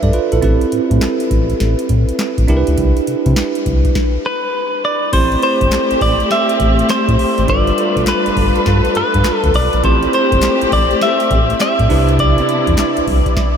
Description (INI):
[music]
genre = R&B, new jack swing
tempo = 102 BPM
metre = 4/4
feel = swing 64% on 16ths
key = A minor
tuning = A4 = 444 Hz
[part]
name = bell-like tine electric piano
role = accompaniment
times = 0.0-13.4 s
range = C4 to E5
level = -19 LUFS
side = right 4 dB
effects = fast stereo tremolo
[part]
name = round analog bass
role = bass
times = 0.0-13.2 s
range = G1 to C3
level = -16 LUFS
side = equal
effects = none
[part]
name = booming analog drum machine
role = drums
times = 0.0-13.6 s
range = crash cymbal, handclaps, hi-hat, kick drum, snare drum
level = -19 LUFS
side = equal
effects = none
[part]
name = direct-recorded clean electric guitar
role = melody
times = 4.3-13.0 s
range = B4 to E5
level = -16 LUFS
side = equal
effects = wide subtle chorus, tape echo
[part]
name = dark studio string section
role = sustained chords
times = 5.1-13.4 s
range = C3 to B4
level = -19 LUFS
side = left 2 dB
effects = none
[part]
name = group handclap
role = percussion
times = 5.7-13.0 s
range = none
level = -35 LUFS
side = left 5 dB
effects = none
[sound]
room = moderate huge ambient reverb, RT60 9.0 s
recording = dreamy mix soaked in reverb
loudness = -12 LUFS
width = side -7 dB against mid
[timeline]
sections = 0.0-5.1 A section; 5.1-13.6 B section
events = stop 4.0-5.1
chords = 0.4 Am7; 2.5 Cmaj9; 4.0 N.C.; 5.1 Am7; 7.5 G9; 9.8 Am7; 11.9 Cmaj9